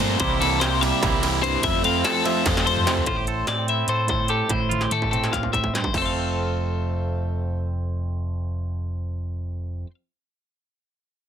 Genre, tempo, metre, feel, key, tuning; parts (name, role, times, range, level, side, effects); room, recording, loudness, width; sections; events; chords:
math rock and midwest emo; 293 BPM (eighths); 7/8; straight; F major; A4 = 440 Hz
twangy electric guitar; accompaniment; 0.0-9.9 s; F2 to A4; -28 LUFS; right 9 dB
twelve-string electric guitar; arpeggios; 0.0-9.9 s; A4 to F5; -25 LUFS; left 8 dB
crunchy overdriven guitar; riff; 0.0-3.1 s; C3 to Bb4; -25 LUFS; left 1 dB
picked electric bass; bass; 0.0-9.8 s; F1 to A2; -27 LUFS; equal
industrial drum kit; drums; 0.0-6.0 s; crash cymbal, hi-hat, kick drum, ride cymbal, snare drum, toms; -27 LUFS; equal; distortion
little or no reverb; dense, heavily limited modern master; -21 LUFS; side -9 dB against mid
0.0-3.1 A section; 3.1-5.9 B section; 5.9-8.8 C section
drum fill 2.5-3.1, 4.7-5.9
0.2 C6; 1.6 Fmaj7; 3.1 Am7; 4.5 Fmaj9/A; 5.9 F